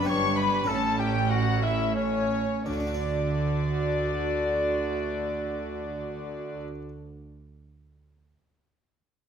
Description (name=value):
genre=classical, baroque-style concerto movement with solo episodes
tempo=86-100 BPM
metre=3/4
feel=straight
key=D major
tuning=A4 = 440 Hz
part: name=clear trumpet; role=melody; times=0.0-6.6 s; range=C#4 to D5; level=-33 LUFS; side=left 2 dB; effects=none
part: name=dark chamber violin section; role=melody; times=0.0-6.6 s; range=C#5 to C#6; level=-32 LUFS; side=left 3 dB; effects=none
part: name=warm studio violin section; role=second line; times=0.0-6.6 s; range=D4 to C#6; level=-34 LUFS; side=left 2 dB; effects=none
part: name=dark chamber viola section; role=accompaniment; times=0.0-6.6 s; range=C#4 to F#4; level=-34 LUFS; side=left 1 dB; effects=none
part: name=harpsichord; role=accompaniment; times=0.0-6.9 s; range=G2 to D5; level=-36 LUFS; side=right 2 dB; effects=none
part: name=rich chamber cello section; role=bass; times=0.0-6.6 s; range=G2 to D3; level=-31 LUFS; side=right 2 dB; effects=none
part: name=rich chamber double bass section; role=bass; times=0.0-6.6 s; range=G1 to D2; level=-33 LUFS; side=right 4 dB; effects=none
room=wet recital hall reverb, RT60 1.5 s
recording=none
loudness=-25 LUFS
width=side -8 dB against mid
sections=0.0-2.7 A section; 2.7-6.8 B section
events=slowing down 0.0-2.7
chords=0.1 G; 0.7 A; 2.7 D